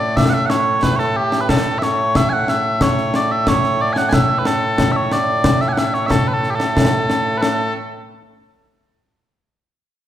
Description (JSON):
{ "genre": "scottish traditional, Scottish pipe music", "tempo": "91 BPM", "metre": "2/4", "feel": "straight", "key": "A major", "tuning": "A4 = 444 Hz", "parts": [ { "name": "mellow small bagpipes", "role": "melody", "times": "0.0-7.7 s", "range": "A2 to G#5", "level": "-17 LUFS", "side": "right 1 dB", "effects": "none" }, { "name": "concert snare drum and concert bass drum", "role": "drums", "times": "0.2-7.6 s", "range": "none", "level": "-18 LUFS", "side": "left 1 dB", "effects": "none" } ], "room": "wet recital hall reverb, RT60 1.5 s", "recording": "recorded in a church or concert hall", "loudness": "-14 LUFS", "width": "side -11 dB against mid", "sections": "0.0-7.4 A section; 7.4-8.7 B section", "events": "none", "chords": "none" }